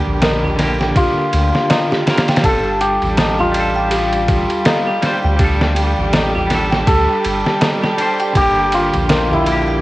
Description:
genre	trip hop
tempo	81 BPM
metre	4/4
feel	swing 58% on 16ths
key	G minor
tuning	A4 = 439 Hz
part	hammered dulcimer	melody	0.0-9.8 s	E4 to A4	-19 LUFS	left 1 dB	vintage 12-bit sampler grit, cassette tape, dub echo
part	semi-hollow electric guitar	accompaniment	0.0-9.8 s	D3 to C5	-22 LUFS	equal	tremolo, cassette tape
part	rich chamber violin section	sustained chords	0.0-9.8 s	G3 to G4	-24 LUFS	right 1 dB	cassette tape
part	music box	arpeggios	0.0-9.8 s	F4 to G5	-24 LUFS	right 3 dB	cassette tape, analog delay
part	soft dub sub bass	bass	0.1-9.8 s	G1 to D2	-20 LUFS	equal	none
part	tabla	percussion	0.1-9.4 s	none	-26 LUFS	left 1 dB	none
part	trip hop sampler-style drum kit	drums	0.2-9.7 s	kick drum, ride cymbal, snare drum	-18 LUFS	equal	small room ambience, cassette tape
room	light reverb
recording	home recording on cassette, vinyl crackle, nothing above 10.5 kHz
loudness	-13 LUFS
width	side -18 dB against mid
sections	0.0-9.8 A section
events	none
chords	0.0 Bb6; 2.4 Gsus2; 8.4 Bb6/G

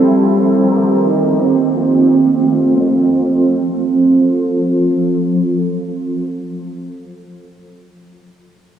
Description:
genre	dream pop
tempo	87 BPM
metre	4/4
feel	straight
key	F major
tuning	A4 = 445 Hz
part	shimmering ambient pad	sustained chords	0.0-6.3 s	F3 to C5	-18 LUFS	right 1 dB	chorus, built-in reverb, phaser, low-pass filter
part	electric guitar at the edge of break-up	arpeggios	0.0-7.0 s	G3 to Bb4	-13 LUFS	right 2 dB	ensemble chorus, low-pass filter, digital delay
room	wet plate reverb, RT60 3.3 s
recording	small room ambience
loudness	-12 LUFS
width	side -9 dB against mid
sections	0.0-2.8 A section; 2.8-5.5 B section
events	filter sweep 0.0-2.8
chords	0.0 Eb6; 1.4 F

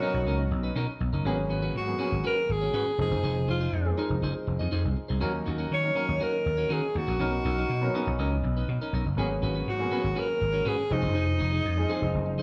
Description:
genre	pop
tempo	121 BPM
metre	4/4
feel	straight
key	unclear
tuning	A4 = 440 Hz
part	breathy alto saxophone	melody	0.0-12.4 s	Eb4 to Db5	-32 LUFS	equal	none
part	clear grand piano	accompaniment	0.0-12.4 s	F3 to A#4	-36 LUFS	equal	none
part	clean electric guitar	riff	0.0-12.4 s	C#4 to Eb5	-37 LUFS	equal	none
part	vintage slap bass	bass	0.1-12.4 s	F1 to Eb3	-31 LUFS	equal	none
room	moderate large studio reverb, RT60 1.1 s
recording	band playing live in one room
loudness	-28 LUFS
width	mono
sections	0.0-12.4 A section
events	none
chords	0.0 Bmaj9; 1.3 Abm11; 3.0 Fm7; 5.2 Ebm7; 7.2 Bmaj9; 9.2 Abm11; 10.9 Fm7

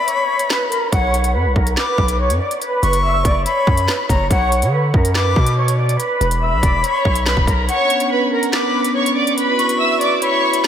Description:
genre	hip hop, drill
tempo	142 BPM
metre	4/4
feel	half-time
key	B harmonic minor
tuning	A4 = 439 Hz
part	dark studio violin section	melody	0.0-10.7 s	A#4 to E6	-19 LUFS	right 2 dB	low-pass filter, tape echo
part	breathy bright jazz flute	second line	0.0-10.7 s	F#5 to D6	-21 LUFS	left 4 dB	tape echo
part	drill drum kit	drums	0.1-10.7 s	handclaps, hi-hat, kick drum, snare drum	-21 LUFS	equal	none
part	hard-hitting 808-style bass	bass	0.9-7.7 s	E1 to D3	-18 LUFS	equal	none
part	glass harmonica	sustained chords	7.7-10.7 s	B3 to B4	-20 LUFS	equal	none
room	moderate church reverb, RT60 3.9 s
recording	dreamy mix soaked in reverb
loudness	-14 LUFS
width	side -9 dB against mid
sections	0.0-10.7 A section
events	break 0.0-0.9; filter sweep on violin section 0.0-7.7; kick muted 7.7-10.7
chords	0.0 N.C.; 0.9 Bmadd9; 2.6 F#7sus4; 4.3 Bmadd9; 6.0 E5; 7.7 Bmadd9; 9.4 F#7sus4

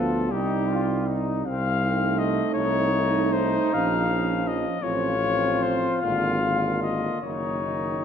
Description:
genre	classical, hymn-like piece for brass band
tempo	45-57 BPM (dotted quarters)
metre	6/8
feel	rubato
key	Bb minor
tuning	A4 = 440 Hz
part	mellow flugelhorn	melody	0.0-8.0 s	G4 to F5	-27 LUFS	left 6 dB	none
part	mellow French horn section	second line	0.0-8.0 s	Bb3 to Eb4	-30 LUFS	right 8 dB	none
part	clear euphonium	accompaniment	0.0-8.0 s	D3 to A3	-32 LUFS	right 2 dB	none
part	mellow trombone section	accompaniment	0.0-8.0 s	C4 to F4	-29 LUFS	left 1 dB	none
part	warm tuba	bass	0.0-8.0 s	Gb1 to D2	-28 LUFS	equal	none
room	moderate scoring stage reverb, RT60 1.9 s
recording	none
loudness	-22 LUFS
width	side -8 dB against mid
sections	0.0-8.0 A section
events	none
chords	0.3 Cm; 1.5 F7/C; 3.7 Bbm; 4.8 F/A; 6.0 Bb7/Ab; 7.2 Ebm/Gb

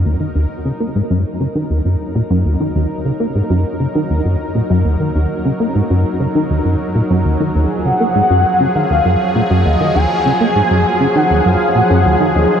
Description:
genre	ambient, sequencer-driven space music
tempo	100 BPM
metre	4/4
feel	straight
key	Eb minor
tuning	A4 = 440 Hz
part	sweeping resonant pad	sustained chords	0.0-12.6 s	F3 to Bb4	-20 LUFS	equal	chorus, shimmer reverb
part	plucky analog bass	riff	0.0-12.5 s	Eb2 to Bb3	-15 LUFS	equal	ensemble chorus, tape echo
part	expressive synth lead	melody	7.8-12.6 s	Eb5 to Ab5	-15 LUFS	left 1 dB	ensemble chorus, shimmer reverb, tape echo
room	wet huge ambient reverb, RT60 8.4 s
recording	cassette tape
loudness	-13 LUFS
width	side -8 dB against mid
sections	0.0-12.6 A section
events	fade-in on analog synth pad 0.0-12.6; filter sweep on analog synth bass 0.0-12.6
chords	0.0 Ebm

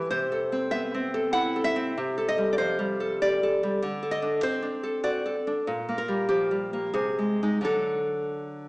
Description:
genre	romantic piece for solo classical guitar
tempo	78-100 BPM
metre	3/4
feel	rubato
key	unclear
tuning	A4 = 440 Hz
part	nylon-string guitar	solo	0.0-8.7 s	Bb2 to F#5	-24 LUFS	equal	none
room	wet recital hall reverb, RT60 1.3 s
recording	recorded in a church or concert hall, small speaker sound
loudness	-24 LUFS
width	side -24 dB against mid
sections	0.0-8.7 A section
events	none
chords	0.1 Am/C; 2.0 Cm69; 3.8 D5; 5.7 Gm/Bb; 6.9 Ab/C; 7.7 D

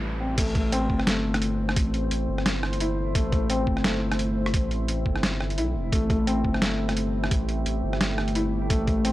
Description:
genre	half-time drum and bass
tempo	173 BPM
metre	4/4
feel	swing 56% on 16ths, half-time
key	A minor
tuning	A4 = 441 Hz
part	deep dark ambient pad	sustained chords	0.0-9.1 s	A3 to C5	-32 LUFS	equal	chorus, built-in reverb, sidechain pumping
part	felt-muted upright piano	arpeggios	0.0-9.1 s	G3 to E4	-28 LUFS	left 2 dB	analog delay
part	saturated sub bass	bass	0.0-9.1 s	E1 to B1	-28 LUFS	equal	tube saturation
part	boom bap sampler-style drum kit	drums	0.4-9.1 s	crash cymbal, hi-hat, rim click, snare drum	-28 LUFS	equal	none
part	electronic kick drum	drums	0.4-9.0 s	none	-26 LUFS	equal	none
room	light reverb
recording	dry, gritty hardware recording, cassette tape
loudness	-22 LUFS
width	side -16 dB against mid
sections	0.4-9.1 A section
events	drop 0.4-9.1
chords	0.4 Am

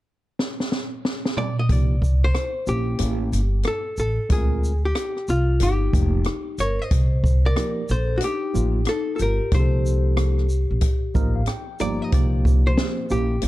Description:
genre	hip hop, jazz-hop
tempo	92 BPM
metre	4/4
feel	swing 64% on 16ths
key	C dorian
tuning	A4 = 438 Hz
part	open jazz drum kit	drums	0.4-13.5 s	hi-hat, kick drum, rim click, shaker, snare drum, toms	-23 LUFS	equal	none
part	archtop guitar, miked and amplified	melody	1.4-13.5 s	F4 to Eb5	-27 LUFS	left 1 dB	none
part	tine electric piano	accompaniment	1.7-13.5 s	F3 to Bb5	-29 LUFS	right 2 dB	medium stereo tremolo
part	upright bass	bass	1.7-13.5 s	F1 to D2	-22 LUFS	equal	none
part	vibraphone with medium hard mallets	second line	5.6-11.4 s	D4 to C5	-30 LUFS	left 5 dB	none
room	small room ambience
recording	dark, warm production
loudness	-19 LUFS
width	side -16 dB against mid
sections	0.0-1.7 A section; 1.7-12.1 B section; 12.1-13.5 B section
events	drum fill 0.4-1.7; tine electric piano fill 10.8-12.1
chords	0.0 N.C.; 1.7 Cm7; 3.0 A7b9; 4.3 Dm7b5; 5.6 F9sus4; 6.9 Cm7

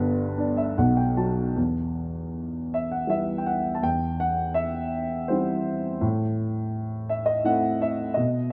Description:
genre	classical, lyrical solo piano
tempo	82 BPM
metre	3/4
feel	uneven beats, rubato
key	E harmonic minor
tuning	A4 = 440 Hz
part	dark grand piano	solo	0.0-8.5 s	G1 to A5	-26 LUFS	equal	none
room	light reverb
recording	close, detailed microphones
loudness	-26 LUFS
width	mono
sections	0.0-1.6 A section; 1.6-8.5 B section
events	grand piano fill 0.0-1.6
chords	0.0 G; 0.8 B5; 1.6 Em; 3.8 C/E; 6.0 Am

